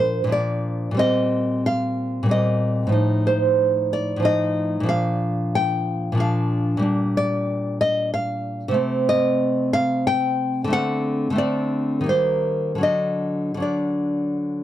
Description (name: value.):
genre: romantic piece for solo classical guitar.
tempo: 76-95 BPM.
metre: 3/4.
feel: rubato.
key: Bb major, G minor from 6.9 s.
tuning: A4 = 435 Hz.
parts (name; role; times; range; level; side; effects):
nylon-string guitar; solo; 0.0-14.6 s; A2 to G5; -19 LUFS; equal; none.
room: light reverb.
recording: dry, close 1970s-style studio recording.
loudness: -19 LUFS.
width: side -12 dB against mid.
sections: 0.0-14.6 A section.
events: none.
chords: 0.0 Bb; 1.0 Cm7/Bb; 3.0 F7/A; 4.9 Bb; 6.9 Gm/Bb; 8.8 Adim/C; 10.7 D7; 12.1 Eb; 12.8 D.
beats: 0.33 | 0.99 1.66 2.31 | 2.95 3.60 4.26 | 4.90 5.56 6.21 | 6.85 7.49 8.13 | 8.77 9.41 10.07 | 10.72 11.39 12.08 | 12.83 13.62 14.39.